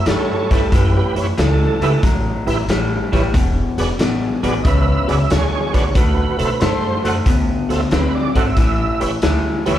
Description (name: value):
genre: electric blues shuffle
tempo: 92 BPM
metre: 4/4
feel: swing 68% on 8ths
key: A mixolydian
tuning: A4 = 442 Hz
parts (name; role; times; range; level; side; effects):
- tonewheel organ; accompaniment; 0.0-9.8 s; E4 to F#5; -22 LUFS; right 4 dB; slow rotary speaker, chorus vibrato, slapback echo
- electric guitar through a small old amp; riff; 0.0-9.8 s; E2 to C4; -21 LUFS; left 3 dB; warbly pitch drift, slapback echo
- upright bass; bass; 0.1-9.8 s; E1 to B2; -20 LUFS; equal; none
- raw garage drum kit; drums; 0.1-9.8 s; hi-hat, kick drum, snare drum; -19 LUFS; equal; none
room: studio ambience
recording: live gig heard through the venue's PA, club reverb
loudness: -14 LUFS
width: side -12 dB against mid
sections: 0.0-9.8 A section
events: none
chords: 0.0 A9; 3.3 E9; 6.0 D9; 8.6 A9